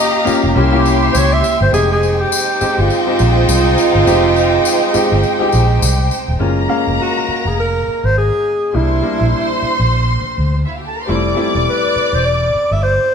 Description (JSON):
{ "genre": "lush 1970s-style soul", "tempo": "103 BPM", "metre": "4/4", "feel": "swing 58% on 16ths", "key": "F minor", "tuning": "A4 = 438 Hz", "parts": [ { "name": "breathy alto saxophone", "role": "melody", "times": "0.0-13.1 s", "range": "E4 to E5", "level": "-16 LUFS", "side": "right 1 dB", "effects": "none" }, { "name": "warm symphonic violin section", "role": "second line", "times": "0.0-13.1 s", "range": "Eb4 to D6", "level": "-19 LUFS", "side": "left 1 dB", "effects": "none" }, { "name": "clear grand piano", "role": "accompaniment", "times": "0.0-13.1 s", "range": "G3 to F5", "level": "-20 LUFS", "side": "left 2 dB", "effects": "none" }, { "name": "warm horn section", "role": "stabs", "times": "0.0-6.1 s", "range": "Ab3 to G4", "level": "-21 LUFS", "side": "right 2 dB", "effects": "none" }, { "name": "vintage muted fingered electric bass", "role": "bass", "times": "0.3-13.0 s", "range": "Eb1 to D2", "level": "-16 LUFS", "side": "right 1 dB", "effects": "none" }, { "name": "tambourine", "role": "percussion", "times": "0.3-6.3 s", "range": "none", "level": "-25 LUFS", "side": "left 4 dB", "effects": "none" }, { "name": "vibraphone with soft mallets", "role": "texture", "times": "0.8-1.7, 5.2-6.1 s", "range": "G5 to C6", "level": "-26 LUFS", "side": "left 3 dB", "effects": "none" } ], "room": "wet stone room reverb, RT60 1.2 s", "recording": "band playing live in one room", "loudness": "-12 LUFS", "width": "side -6 dB against mid", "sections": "0.0-6.4 A section; 6.4-13.1 B section", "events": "none", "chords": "0.0 Gm7b5; 0.6 C7b9; 1.7 Fm9; 6.4 Gbmaj9; 8.7 C9; 11.1 Fmaj7" }